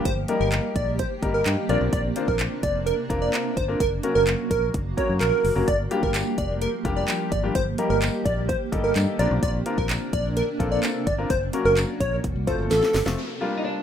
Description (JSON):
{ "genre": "dance-pop", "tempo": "128 BPM", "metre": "4/4", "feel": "straight", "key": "Bb major", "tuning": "A4 = 440 Hz", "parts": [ { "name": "warm concert grand piano", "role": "accompaniment", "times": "0.0-13.8 s", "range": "F3 to C5", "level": "-28 LUFS", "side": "left 3 dB", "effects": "sidechain pumping" }, { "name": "granular cloud pad", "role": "sustained chords", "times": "0.0-13.2 s", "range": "C3 to G4", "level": "-32 LUFS", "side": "right 2 dB", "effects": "built-in reverb, sidechain pumping" }, { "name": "plucky unison lead", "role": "melody", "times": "0.1-13.0 s", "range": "A4 to D5", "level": "-25 LUFS", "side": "right 1 dB", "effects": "sidechain pumping" }, { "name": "fingered electric bass", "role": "bass", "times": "0.1-13.2 s", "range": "F1 to G2", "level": "-26 LUFS", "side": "equal", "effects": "sidechain pumping" }, { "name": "house drum kit", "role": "drums", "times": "0.1-13.2 s", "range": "handclaps, hi-hat, kick drum, snare drum", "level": "-28 LUFS", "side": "equal", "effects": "none" }, { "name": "tambourine", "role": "percussion", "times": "6.1-12.8 s", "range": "none", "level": "-38 LUFS", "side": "right 8 dB", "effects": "none" }, { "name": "downlifter", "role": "sound effects", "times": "13.2-13.8 s", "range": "none", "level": "-34 LUFS", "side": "equal", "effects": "none" }, { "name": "twelve-string electric guitar", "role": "melody", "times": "13.6-13.8 s", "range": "D4 to Eb4", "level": "-28 LUFS", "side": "left 1 dB", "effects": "none" } ], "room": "wet studio reverb, RT60 0.5 s", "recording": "rough home demo mix", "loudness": "-21 LUFS", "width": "side -9 dB against mid", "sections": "0.0-13.2 A section", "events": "drop 0.0-13.2; drum fill 12.7-13.2", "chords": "0.1 Eb/G; 1.7 Bbadd9; 3.8 Gb; 5.7 Gm7; 7.6 Eb/G; 9.2 Bbadd9; 11.3 Gb; 12.2 F; 13.2 Gm7" }